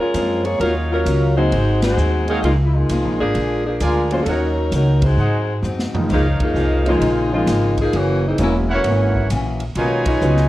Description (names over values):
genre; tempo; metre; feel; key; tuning
jazz, big band swing; 131 BPM; 4/4; swing 66% on 8ths; Db major; A4 = 441 Hz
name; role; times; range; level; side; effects
mellow saxophone section; melody; 0.0-10.5 s; Fb3 to Eb5; -19 LUFS; left 1 dB; plate reverb
picked acoustic archtop guitar; accompaniment; 0.0-10.5 s; Gb2 to Gb4; -28 LUFS; left 3 dB; none
clear trumpet section; stabs; 0.0-10.5 s; Eb4 to Ab5; -26 LUFS; right 2 dB; none
upright bass; bass; 0.1-10.5 s; Fb1 to Ab2; -19 LUFS; equal; none
swinging big-band drum kit; drums; 0.1-10.5 s; crash cymbal, hi-hat, kick drum, ride cymbal, snare drum, toms; -28 LUFS; equal; none
clear grand piano; accompaniment; 0.2-10.5 s; Db2 to Ab4; -24 LUFS; equal; none
room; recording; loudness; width
light reverb; worn, warbling old tape, cassette tape, warbly pitch drift; -16 LUFS; side -16 dB against mid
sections
0.0-6.1 A section; 6.1-10.5 A section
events
band accent 1.8, 5.0, 6.3, 10.0; drum fill 5.6-6.1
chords
0.0 Gbmaj9#11; 0.6 Ebm9; 1.5 Ab7; 2.4 Db69; 3.4 Bb7; 4.3 Ebm7; 5.2 Ab7; 6.1 Db69; 7.9 Gb7; 9.8 Cb69